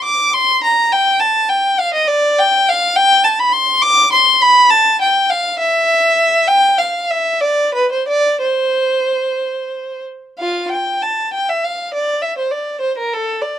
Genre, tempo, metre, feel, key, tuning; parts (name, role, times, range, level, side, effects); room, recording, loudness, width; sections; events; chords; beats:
classical, baroque-style suite movement for unaccompanied violin; 59-71 BPM (dotted quarters); 6/8; rubato; C major, F major from 10.4 s; A4 = 440 Hz
rich violin; solo; 0.0-13.6 s; F4 to D6; -12 LUFS; equal
light reverb; dark, warm production; -12 LUFS; side -10 dB against mid
0.0-10.4 A section; 10.4-13.6 A section
0.35 | 1.21 2.08 | 2.96 3.83 | 4.71 5.58 | 6.48 7.41 | 8.40 9.39 | 10.38 11.31 | 12.21 13.10